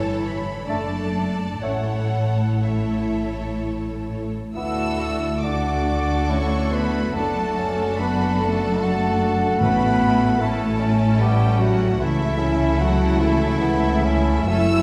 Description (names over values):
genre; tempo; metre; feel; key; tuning
classical, slow romantic movement for symphony orchestra; 60-76 BPM; 3/4; rubato; D major; A4 = 440 Hz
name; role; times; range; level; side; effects
warm symphonic violin section; melody; 0.0-14.8 s; E5 to E6; -33 LUFS; equal; none
clear symphonic violin section; second line; 0.0-14.8 s; E4 to D5; -33 LUFS; equal; none
rich symphonic viola section; accompaniment; 0.0-14.8 s; E3 to E4; -30 LUFS; equal; none
dark symphonic cello section; bass; 0.0-14.8 s; D2 to C#3; -28 LUFS; equal; none
dark symphonic double bass section; bass; 0.0-14.8 s; F#1 to D2; -28 LUFS; equal; none
clear clarinet; second line; 0.7-14.8 s; E4 to E5; -32 LUFS; equal; none
clear bassoon; accompaniment; 0.7-14.8 s; A3 to F#4; -30 LUFS; equal; none
mellow French horn section; sustained chords; 0.7-14.8 s; E3 to E4; -28 LUFS; equal; none
timpani; percussion; 9.6-10.8 s; A2; -31 LUFS; equal; none
room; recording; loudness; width
wet scoring stage reverb, RT60 2.0 s; heard from further back in the room; -21 LUFS; mono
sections
0.0-4.6 A section; 4.6-14.8 B section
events
none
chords
0.0 A; 0.7 D/F#; 1.6 A; 4.6 D; 7.2 D/F#; 9.6 A; 12.0 A/C#